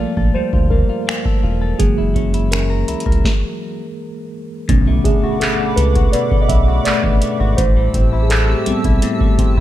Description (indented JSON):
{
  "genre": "contemporary R&B",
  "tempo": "83 BPM",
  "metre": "4/4",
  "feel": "straight",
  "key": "B minor from 4.7 s",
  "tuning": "A4 = 436 Hz",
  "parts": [
    { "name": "mellow tine electric piano", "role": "accompaniment", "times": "0.0-9.6 s", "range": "D3 to E5", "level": "-20 LUFS", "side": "right 2 dB", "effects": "fast stereo tremolo" },
    { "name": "clean electric guitar", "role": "arpeggios", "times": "0.0-9.6 s", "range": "A2 to A#4", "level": "-24 LUFS", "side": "left 7 dB", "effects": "none" },
    { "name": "round analog bass", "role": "bass", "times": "0.0-9.6 s", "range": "E1 to D2", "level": "-17 LUFS", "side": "equal", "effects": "none" },
    { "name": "booming analog drum machine", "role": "drums", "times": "0.2-9.6 s", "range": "finger snaps, handclaps, hi-hat, kick drum, snare drum", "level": "-17 LUFS", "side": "equal", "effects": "none" },
    { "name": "hollow soft pad", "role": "sustained chords", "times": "4.7-9.6 s", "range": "A3 to E6", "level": "-24 LUFS", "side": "left 2 dB", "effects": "chorus" },
    { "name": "impact", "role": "sound effects", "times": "4.7-7.6 s", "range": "none", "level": "-28 LUFS", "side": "equal", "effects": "none" },
    { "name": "celesta", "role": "texture", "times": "5.1-8.0 s", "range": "B4 to F#5", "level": "-30 LUFS", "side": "right 5 dB", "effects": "none" }
  ],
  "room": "digital ambience",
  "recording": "none",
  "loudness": "-13 LUFS",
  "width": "side -13 dB against mid",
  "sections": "0.0-4.7 A section; 4.7-9.6 B section",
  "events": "tine electric piano solo 0.0-4.7, 4.7-9.6; stop 3.2-4.7; impact 4.7-7.6",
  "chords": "0.0 Gm9; 1.8 F#7; 4.7 Bm7; 7.6 Am7",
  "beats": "0.35 1.07 | 1.80 2.52 3.24 3.97 | 4.69 5.41 6.13 6.86 | 7.58 8.30 9.03"
}